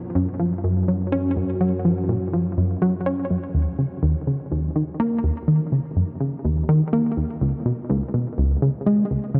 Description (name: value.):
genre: ambient, sequencer-driven space music.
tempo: 124 BPM.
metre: 4/4.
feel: straight.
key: Eb minor.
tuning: A4 = 440 Hz.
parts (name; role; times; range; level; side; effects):
analog drone; bass; 0.3-3.5 s; Gb2; -30 LUFS; equal; chorus.
tight sequenced synth; riff; 0.2-9.4 s; Db2 to Db4; -22 LUFS; equal; chorus, delay.
room: moderate huge ambient reverb, RT60 7.8 s.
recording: none.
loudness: -22 LUFS.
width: mono.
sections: 0.0-3.5 A section; 3.5-9.4 B section.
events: none.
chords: 0.0 N.C.; 3.5 Eb5; 7.4 N.C..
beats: 0.15 0.64 1.12 | 1.61 2.09 2.58 3.06 | 3.54 4.03 4.51 4.99 | 5.48 5.96 6.45 6.93 | 7.41 7.90 8.38 8.87 | 9.35.